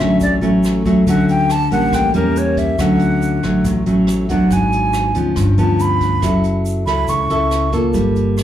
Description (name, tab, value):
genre	bossa nova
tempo	140 BPM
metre	4/4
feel	straight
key	D major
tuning	A4 = 441 Hz
part	concert flute	melody	0.0-7.7 s	Bb4 to C#6	-20 LUFS	right 1 dB	slapback echo
part	nylon-string guitar	accompaniment	0.0-8.4 s	G2 to A4	-15 LUFS	equal	none
part	fingered electric bass	bass	0.0-8.4 s	F#1 to E2	-21 LUFS	equal	none
part	jazz brush drum kit	drums	0.0-8.4 s	hi-hat, kick drum, rim click	-27 LUFS	right 1 dB	none
part	tube shaker	percussion	0.2-8.4 s	none	-38 LUFS	right 6 dB	none
room	moderate club reverb, RT60 0.6 s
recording	live gig heard through the venue's PA, club reverb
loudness	-13 LUFS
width	side -11 dB against mid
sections	0.0-2.8 A section; 2.8-8.4 A section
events	flute solo 0.0-8.4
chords	0.0 Dmaj7; 1.9 A7b9; 2.8 Dmaj7; 4.5 G#m7b5; 5.4 G7#11; 6.2 F#m7